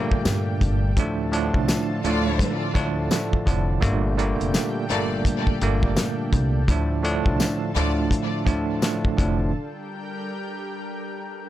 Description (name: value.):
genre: hip hop, boom-bap hip-hop.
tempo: 84 BPM.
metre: 4/4.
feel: swing 61% on 16ths.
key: D minor.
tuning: A4 = 440 Hz.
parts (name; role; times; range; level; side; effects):
barky tine electric piano; accompaniment; 0.0-9.5 s; A2 to D4; -24 LUFS; right 2 dB; medium stereo tremolo.
lush unison pad; sustained chords; 0.0-11.5 s; D3 to A5; -32 LUFS; left 1 dB; chorus.
upright bass; bass; 0.0-9.5 s; F1 to G2; -26 LUFS; equal; none.
cloth-damped thuddy drum kit; drums; 0.1-9.4 s; hi-hat, kick drum, snare drum; -23 LUFS; equal; vintage 12-bit sampler grit.
tambourine; percussion; 0.3-9.0 s; none; -36 LUFS; left 8 dB; none.
warm studio string section; stabs; 2.0-8.1 s; A3 to D5; -30 LUFS; left 2 dB; digital delay.
room: little or no reverb.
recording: none.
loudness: -20 LUFS.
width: side -13 dB against mid.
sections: 0.0-11.5 A section.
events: break 9.5-11.5.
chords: 0.0 Gmadd9; 1.0 Dm; 3.8 Gmadd9; 6.7 Dm; 9.5 Gmadd9.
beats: 0.25 | 0.97 1.68 2.40 3.11 | 3.82 4.54 5.25 5.97 | 6.68 7.40 8.11 8.82 | 9.54 10.25 10.97.